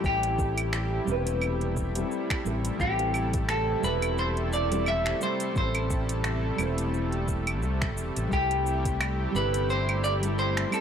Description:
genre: sunset chillout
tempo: 87 BPM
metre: 4/4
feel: swing 56% on 16ths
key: A minor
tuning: A4 = 440 Hz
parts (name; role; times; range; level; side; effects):
- nylon-string guitar; accompaniment; 0.0-10.8 s; G3 to C5; -33 LUFS; moving between left 4 dB and right 4 dB; auto-pan, analog delay
- lush unison pad; sustained chords; 0.0-10.8 s; C3 to A4; -33 LUFS; equal; chorus
- fretless electric bass; bass; 0.0-10.6 s; E1 to C2; -30 LUFS; equal; none
- electronic kick drum; drums; 0.0-9.0 s; none; -30 LUFS; equal; overdrive
- smooth R&B drum kit; drums; 0.0-10.8 s; claves, finger snaps, hi-hat, shaker; -33 LUFS; right 2 dB; overdrive
- semi-hollow electric guitar; melody; 0.1-10.8 s; G4 to E5; -29 LUFS; equal; spring reverb, analog delay
room: light reverb, digital ambience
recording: dry, gritty hardware recording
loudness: -25 LUFS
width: side -8 dB against mid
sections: 0.0-10.8 A section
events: none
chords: 0.0 Am7; 8.3 C6

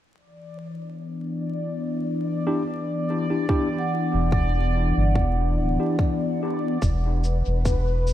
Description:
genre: ambient dub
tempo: 72 BPM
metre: 4/4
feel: swing 55% on 16ths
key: unclear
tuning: A4 = 442 Hz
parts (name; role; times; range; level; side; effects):
- warbly tape-like pad; sustained chords; 0.2-8.1 s; E3 to E4; -27 LUFS; left 2 dB; chorus, built-in reverb
- bubbling stepped-filter texture; texture; 0.4-8.1 s; B4 to D5; -32 LUFS; left 1 dB; chorus, built-in reverb
- tine electric piano; stabs; 2.5-6.0 s; D4 to G4; -30 LUFS; equal; medium stereo tremolo, low-pass filter, dub echo
- electronic kick drum; drums; 3.5-7.8 s; none; -25 LUFS; equal; small room reverb
- vibraphone with medium hard mallets; arpeggios; 3.8-6.8 s; F#5; -32 LUFS; right 8 dB; auto-pan, low-pass filter, dub echo
- soft dub sub bass; bass; 4.1-8.1 s; D1 to G1; -22 LUFS; equal; none
- cabasa; drums; 6.8-8.1 s; none; -42 LUFS; left 2 dB; small room reverb, dub echo
room: light reverb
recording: vinyl crackle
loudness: -21 LUFS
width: side -12 dB against mid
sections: 0.2-6.8 A section; 6.8-8.1 B section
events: none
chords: 0.2 Em7; 6.8 E7(no3)

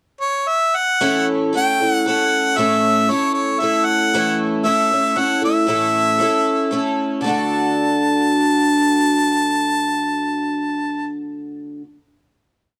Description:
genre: rock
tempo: 116 BPM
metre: 3/4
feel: straight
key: D major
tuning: A4 = 440 Hz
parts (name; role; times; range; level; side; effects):
- bright harmonica; melody; 0.2-11.1 s; C#5 to A5; -20 LUFS; equal; none
- picked twelve-string acoustic guitar; accompaniment; 1.0-11.9 s; A2 to A4; -21 LUFS; equal; subtle chorus
room: moderate studio reverb, RT60 0.9 s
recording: dark, warm production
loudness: -18 LUFS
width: mono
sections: 0.0-1.0 pickup bar; 1.0-7.2 pre-chorus; 7.2-10.3 final chord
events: none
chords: 0.0 N.C.; 1.0 A; 7.2 D

